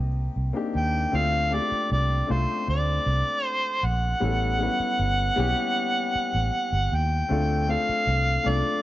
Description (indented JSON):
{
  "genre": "lush 1970s-style soul",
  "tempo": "78 BPM",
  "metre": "4/4",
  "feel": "straight",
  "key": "unclear",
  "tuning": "A4 = 438 Hz",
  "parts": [
    { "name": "warm grand piano", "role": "accompaniment", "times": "0.0-8.8 s", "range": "G3 to C5", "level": "-29 LUFS", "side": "left 4 dB", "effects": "none" },
    { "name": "vintage muted fingered electric bass", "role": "bass", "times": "0.0-8.6 s", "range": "G1 to Eb2", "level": "-25 LUFS", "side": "right 1 dB", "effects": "none" },
    { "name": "mellow harmonica", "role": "melody", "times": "0.8-8.8 s", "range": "C5 to G5", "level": "-25 LUFS", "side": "right 1 dB", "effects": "none" }
  ],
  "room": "light reverb, small room ambience",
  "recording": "nothing above 7.7 kHz",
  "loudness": "-22 LUFS",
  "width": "side -15 dB against mid",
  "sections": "0.0-1.1 A section; 1.1-8.8 B section",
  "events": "none",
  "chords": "0.0 Cm7; 1.1 Dm7; 4.2 A7; 7.3 Dm7"
}